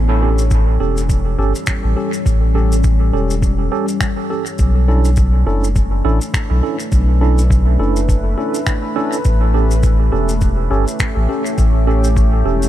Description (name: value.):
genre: ambient dub.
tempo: 103 BPM.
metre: 4/4.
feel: swing 58% on 16ths.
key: unclear.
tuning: A4 = 440 Hz.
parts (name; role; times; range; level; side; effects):
deep dark ambient pad; sustained chords; 0.0-12.7 s; G3 to C#5; -23 LUFS; left 2 dB; chorus, built-in reverb.
warm sub bass; bass; 0.0-12.7 s; E1 to B1; -14 LUFS; equal; none.
tine electric piano; stabs; 0.2-12.7 s; C#4 to A4; -22 LUFS; right 3 dB; medium stereo tremolo, dub echo.
shaker and finger snaps; drums; 0.4-12.7 s; none; -27 LUFS; left 1 dB; dub echo.
electronic kick drum; drums; 0.5-12.3 s; none; -17 LUFS; equal; none.
room: studio ambience.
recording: none.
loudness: -13 LUFS.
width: side -13 dB against mid.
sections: 0.0-12.7 A section.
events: none.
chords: 0.0 A7; 4.6 Bm11; 9.2 A7.